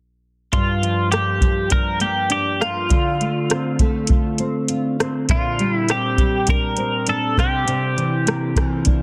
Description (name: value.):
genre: indie pop, bedroom pop.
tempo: 101 BPM.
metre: 4/4.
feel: straight.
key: G dorian.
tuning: A4 = 439 Hz.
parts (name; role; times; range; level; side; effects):
twelve-string electric guitar; melody; 0.5-9.0 s; F4 to Bb4; -24 LUFS; equal; analog chorus, digital delay.
nylon-string guitar; accompaniment; 0.5-9.0 s; G2 to F4; -24 LUFS; equal; analog chorus, vibrato effect.
soft vintage rhythm box; drums; 0.5-9.0 s; hi-hat, kick drum, rim click; -22 LUFS; equal; soft clipping on snare.
room: moderate spring reverb, RT60 2.8 s.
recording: dense, heavily limited modern master.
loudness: -20 LUFS.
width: mono.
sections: 0.5-9.0 A section.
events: none.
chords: 0.5 Gm7; 2.9 Dm7; 5.3 Bb69; 7.4 C9.